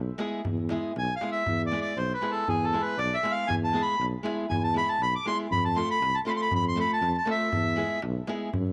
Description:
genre	balkan folk, Balkan wedding band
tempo	119 BPM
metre	2/4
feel	straight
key	E phrygian dominant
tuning	A4 = 441 Hz
part	mellow tuba	bass	0.0-8.7 s	B1 to F#2	-33 LUFS	equal	none
part	nylon-string guitar	accompaniment	0.2-8.5 s	G#3 to A4	-36 LUFS	equal	none
part	darbuka	percussion	0.2-8.7 s	none	-37 LUFS	equal	none
part	accordion	melody	1.0-8.0 s	G#4 to D6	-29 LUFS	equal	none
room	light reverb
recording	none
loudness	-28 LUFS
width	mono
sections	0.0-8.7 A section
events	accordion solo 0.0-8.7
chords	0.0 E; 5.5 F; 7.5 E

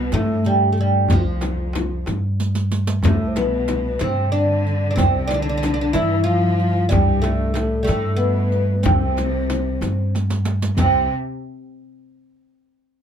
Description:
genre	Persian modal ensemble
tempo	62 BPM (dotted quarters)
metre	6/8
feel	straight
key	C dastgah mahur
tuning	A4 = 440 Hz
part	oud	melody	0.0-11.1 s	F3 to F4	-22 LUFS	right 1 dB	none
part	breathy mellow low ney	second line	0.0-11.1 s	F4 to F5	-29 LUFS	left 4 dB	none
part	rich chamber cello section	second line	0.0-11.1 s	F2 to F3	-27 LUFS	left 1 dB	none
part	upright bass	bass	0.0-11.1 s	C2 to G2	-21 LUFS	equal	none
part	frame drum	percussion	0.1-11.1 s	none	-26 LUFS	left 3 dB	none
part	riq	percussion	0.1-11.1 s	none	-31 LUFS	right 8 dB	none
part	tombak	percussion	0.1-11.1 s	none	-22 LUFS	equal	none
room	little or no reverb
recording	close, detailed microphones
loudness	-17 LUFS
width	side -8 dB against mid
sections	0.0-10.8 A section; 10.8-12.7 B section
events	drum fill 2.4-3.0, 10.1-10.8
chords	none

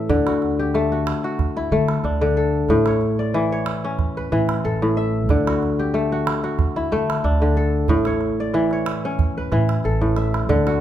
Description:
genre	west african traditional, West African string and xylophone music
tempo	92 BPM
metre	4/4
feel	swing 54% on 16ths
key	D major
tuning	A4 = 440 Hz
part	kora	arpeggios	0.0-10.8 s	A2 to E5	-20 LUFS	left 1 dB	none
part	upright bass	bass	0.1-10.8 s	A1 to D3	-24 LUFS	right 1 dB	none
part	calabash	percussion	0.1-10.8 s	none	-25 LUFS	right 4 dB	none
room	light reverb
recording	minimal, uncompressed stereo recording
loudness	-18 LUFS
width	side -11 dB against mid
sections	0.1-10.8 A section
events	drum fill 10.0-10.5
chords	0.1 D; 2.7 A; 5.3 D; 7.9 A

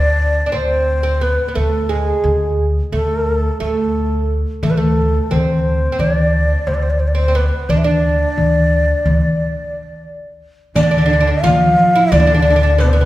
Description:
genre	Turkish makam ensemble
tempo	176 BPM (eighths)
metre	9/8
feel	straight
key	D makam nikriz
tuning	A4 = 440 Hz
part	breathy mellow ney	melody	0.0-13.1 s	G#4 to F5	-18 LUFS	equal	none
part	oud	second line	0.0-13.1 s	G#3 to F4	-22 LUFS	right 3 dB	none
part	upright bass	bass	0.0-13.1 s	D2	-17 LUFS	equal	none
part	darbuka	percussion	4.6-13.0 s	none	-18 LUFS	left 1 dB	none
part	dark studio cello section	second line	10.8-13.1 s	B2 to F3	-20 LUFS	right 1 dB	none
part	riq	percussion	10.8-13.0 s	none	-30 LUFS	left 3 dB	none
room	wet recital hall reverb, RT60 1.8 s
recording	recorded in a church or concert hall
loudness	-13 LUFS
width	side -15 dB against mid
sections	0.0-10.8 A section; 10.8-13.1 B section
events	break 9.2-10.8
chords	none

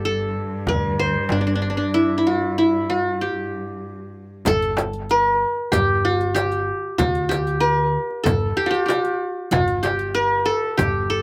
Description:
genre	Arabic maqam ensemble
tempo	95 BPM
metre	4/4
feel	straight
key	G maqam rast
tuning	A4 = 440 Hz
part	qanun	melody	0.0-11.2 s	D4 to C5	-22 LUFS	equal	none
part	upright bass	bass	0.0-11.2 s	G1 to D2	-29 LUFS	equal	none
part	warm cello	drone	0.0-4.5 s	G2	-31 LUFS	equal	none
part	darbuka	percussion	0.7-10.9 s	none	-32 LUFS	equal	none
part	frame drum	percussion	0.7-10.9 s	none	-29 LUFS	equal	none
part	riq	percussion	4.5-10.9 s	none	-33 LUFS	equal	none
room	little or no reverb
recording	recorded outdoors, with no room sound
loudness	-21 LUFS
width	mono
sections	0.0-4.5 A section; 4.5-11.2 B section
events	none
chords	none

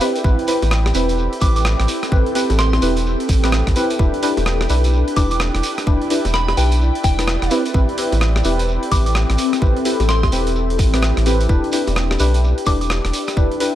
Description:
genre	UK garage, two-step garage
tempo	128 BPM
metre	4/4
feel	swing 62% on 16ths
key	A minor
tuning	A4 = 440 Hz
part	soft synth bell	melody	0.0-12.9 s	G5 to D6	-26 LUFS	equal	chorus, phaser, tape echo
part	warm analog pad	sustained chords	0.0-13.8 s	C4 to B4	-28 LUFS	left 1 dB	lush chorus, sidechain pumping
part	deep mellow chord stab	stabs	0.0-13.7 s	C4 to B4	-22 LUFS	left 1 dB	chorus, tape echo
part	breakbeat sampler-style drum kit	drums	0.0-13.7 s	bongos, hi-hat, rim click	-25 LUFS	equal	studio reverb
part	shekere	percussion	0.0-13.7 s	none	-30 LUFS	right 2 dB	none
part	ethereal airy pad	texture	0.0-13.8 s	C4 to G5	-25 LUFS	equal	ensemble chorus, built-in reverb, phaser, sidechain pumping
part	soft dub sub bass	bass	0.2-13.5 s	E1 to B1	-18 LUFS	equal	none
part	electronic kick drum	drums	0.2-13.5 s	none	-18 LUFS	equal	studio reverb
room	little or no reverb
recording	dry, gritty hardware recording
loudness	-15 LUFS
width	side -12 dB against mid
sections	0.0-13.8 A section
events	none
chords	0.0 Am7; 4.0 Em7; 7.5 Am7; 11.5 Em7

